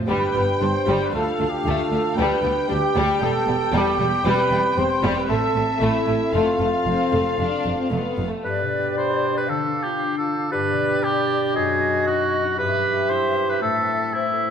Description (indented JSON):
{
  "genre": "cinematic, heroic adventure film score",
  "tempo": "115 BPM",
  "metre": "4/4",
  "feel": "straight",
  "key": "G mixolydian",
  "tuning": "A4 = 442 Hz",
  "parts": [
    { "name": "rich symphonic cello section", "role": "bass", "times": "0.0-8.2 s", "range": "D2 to A2", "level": "-29 LUFS", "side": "right 2 dB", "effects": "none" },
    { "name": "warm symphonic violin section", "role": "melody", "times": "0.1-8.2 s", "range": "E5 to G5", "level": "-31 LUFS", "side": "left 4 dB", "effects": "none" },
    { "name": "warm symphonic violin section", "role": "second line", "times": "0.1-8.4 s", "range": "G3 to D4", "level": "-27 LUFS", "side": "left 3 dB", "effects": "none" },
    { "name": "rich studio viola section", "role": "accompaniment", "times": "0.1-8.2 s", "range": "G3 to A3", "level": "-28 LUFS", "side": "equal", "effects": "none" },
    { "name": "mellow French horn section", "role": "sustained chords", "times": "0.1-8.1 s", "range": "B3 to A4", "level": "-27 LUFS", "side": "left 3 dB", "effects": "none" },
    { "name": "mellow trumpet section", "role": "stabs", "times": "0.1-8.2 s", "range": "E4 to C5", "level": "-23 LUFS", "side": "right 2 dB", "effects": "none" },
    { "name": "rich symphonic double bass section", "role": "bass", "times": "0.1-8.3 s", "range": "E1 to D2", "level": "-28 LUFS", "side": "right 2 dB", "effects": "none" },
    { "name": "bright small flute group", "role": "second line", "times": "8.4-14.5 s", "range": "D5 to F5", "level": "-28 LUFS", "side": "left 4 dB", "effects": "none" },
    { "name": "warm clarinet", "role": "second line", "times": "8.4-14.5 s", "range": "A3 to G4", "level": "-26 LUFS", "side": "right 2 dB", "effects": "none" },
    { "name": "warm oboe", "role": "second line", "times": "8.4-14.5 s", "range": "E4 to C5", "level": "-22 LUFS", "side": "right 2 dB", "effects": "none" },
    { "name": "concert harp", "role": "arpeggios", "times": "8.4-14.5 s", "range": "F#2 to B5", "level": "-27 LUFS", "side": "left 7 dB", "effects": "none" }
  ],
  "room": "wet scoring stage reverb, RT60 1.6 s",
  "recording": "none",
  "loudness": "-19 LUFS",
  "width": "side -7 dB against mid",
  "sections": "0.0-8.4 A section; 8.4-14.5 A section",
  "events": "none",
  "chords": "0.1 G; 1.1 Dm; 2.2 G/D; 3.2 Em; 4.3 C/E; 5.3 Am; 6.3 F; 8.4 G; 9.5 Dm; 10.5 G; 11.6 B/F#; 12.6 Em/G; 13.6 Am",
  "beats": "| 0.09 0.61 1.14 1.66 | 2.17 2.69 3.21 3.73 | 4.25 4.77 5.29 5.81 | 6.33 6.86 7.39 7.92 | 8.44 8.97 9.49 10.00 | 10.52 11.04 11.55 12.07 | 12.58 13.10 13.62 14.14"
}